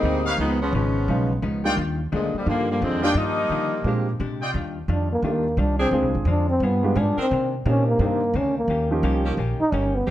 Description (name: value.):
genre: jazz, big band swing.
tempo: 174 BPM.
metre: 4/4.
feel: swing 63% on 8ths.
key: Eb major.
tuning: A4 = 440 Hz.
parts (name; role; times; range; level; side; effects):
mellow saxophone section; melody; 0.0-4.2 s; Bb2 to Eb4; -24 LUFS; left 1 dB; plate reverb.
hollow-body jazz guitar; accompaniment; 0.0-10.1 s; Ab2 to Ab4; -32 LUFS; left 4 dB; none.
warm grand piano; accompaniment; 0.0-9.4 s; F3 to Ab4; -27 LUFS; right 2 dB; none.
upright bass; bass; 0.0-10.1 s; G1 to D3; -24 LUFS; equal; none.
bright trumpet section; stabs; 0.3-4.5 s; Eb4 to G5; -27 LUFS; left 1 dB; none.
breathy trombone; melody; 4.9-10.1 s; Bb3 to Eb4; -23 LUFS; equal; plate reverb.
warm saxophone section; sustained chords; 5.8-10.1 s; Eb3 to Bb4; -29 LUFS; right 1 dB; none.
room: light reverb.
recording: none.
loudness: -20 LUFS.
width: side -13 dB against mid.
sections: 0.0-4.5 A section; 4.5-10.1 B section.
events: trombone solo 4.5-10.1.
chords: 0.4 Db9; 1.8 Ebmaj9; 3.8 Bb13; 4.5 Ebmaj9; 5.9 Dm7b5; 6.6 G7b9; 7.3 Cm9; 8.7 Eb7.